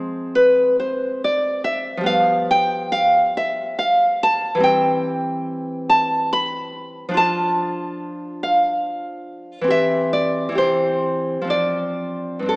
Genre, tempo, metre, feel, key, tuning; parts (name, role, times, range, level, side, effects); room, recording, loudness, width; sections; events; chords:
romantic piece for solo classical guitar; 70 BPM; 3/4; rubato; C major; A4 = 444 Hz
nylon-string guitar; solo; 0.0-12.6 s; G2 to B5; -17 LUFS; equal
moderate concert hall reverb, RT60 1.8 s; small speaker sound; -17 LUFS; side -25 dB against mid
0.0-12.6 A section
0.0 Fm; 2.1 G7/F; 4.6 C/E; 7.2 Dm/F; 9.7 C/E; 11.5 Dm7/F